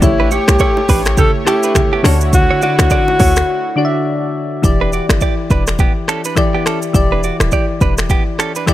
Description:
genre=afrobeats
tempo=104 BPM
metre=4/4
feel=swing 58% on 16ths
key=E dorian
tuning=A4 = 440 Hz
part: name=breathy alto saxophone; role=melody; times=0.0-4.3 s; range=E4 to A4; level=-16 LUFS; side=equal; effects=none
part: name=soft electric-piano-like synth keys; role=accompaniment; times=0.0-8.7 s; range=D3 to E5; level=-19 LUFS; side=left 3 dB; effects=chorus
part: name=warm analog pad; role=sustained chords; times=0.0-4.6 s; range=D3 to C#5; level=-23 LUFS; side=right 1 dB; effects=chorus
part: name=short 808-style bass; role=bass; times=0.0-8.2 s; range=D1 to D2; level=-15 LUFS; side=equal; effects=none
part: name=afro-pop drum kit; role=drums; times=0.0-8.7 s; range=finger snaps, hi-hat, kick drum, rim click, shaker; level=-16 LUFS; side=equal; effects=none
part: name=congas and bongos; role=percussion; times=0.0-3.5 s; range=none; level=-24 LUFS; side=right 4 dB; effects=none
part: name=direct-recorded clean electric guitar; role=riff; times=0.2-8.7 s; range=B3 to D5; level=-21 LUFS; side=right 7 dB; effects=digital delay
room=digital ambience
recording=none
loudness=-12 LUFS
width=side -14 dB against mid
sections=0.0-4.6 A section; 4.6-8.7 B section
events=break 3.5-4.6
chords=0.0 A7; 2.0 Dmaj7; 4.6 Em7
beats=| 0.02 0.60 1.18 1.75 | 2.33 2.91 3.48 4.06 | 4.64 5.21 5.79 6.37 | 6.95 7.52 8.10 8.68

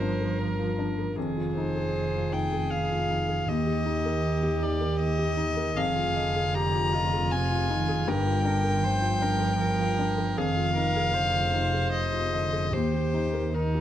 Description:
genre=neoclassical piano and strings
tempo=78 BPM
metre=3/4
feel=rubato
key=F dorian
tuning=A4 = 445 Hz
part: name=warm violin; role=melody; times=0.0-13.8 s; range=Bb4 to Bb5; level=-29 LUFS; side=left 2 dB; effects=none
part: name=dark cello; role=second line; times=0.0-13.8 s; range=C3 to F3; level=-32 LUFS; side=right 5 dB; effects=none
part: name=felt-muted upright piano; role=accompaniment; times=0.0-13.8 s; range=Eb2 to Eb5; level=-32 LUFS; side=left 4 dB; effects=none
part: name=rich viola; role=accompaniment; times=0.0-13.8 s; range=Eb4 to C5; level=-33 LUFS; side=right 3 dB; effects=none
part: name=dark double bass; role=bass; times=0.0-13.8 s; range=F1 to Eb2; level=-30 LUFS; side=equal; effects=none
room=light reverb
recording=close, detailed microphones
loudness=-24 LUFS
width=side -11 dB against mid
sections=0.0-13.8 A section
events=none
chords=0.0 Gm7; 1.2 Fm7; 3.5 Eb; 5.8 Fm7; 8.1 Gm7; 10.4 Fm7; 12.7 Eb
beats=0.39 | 1.17 1.94 2.71 | 3.48 4.24 5.00 | 5.77 6.55 7.32 | 8.08 8.84 9.61 | 10.38 11.14 11.93 | 12.73 13.54

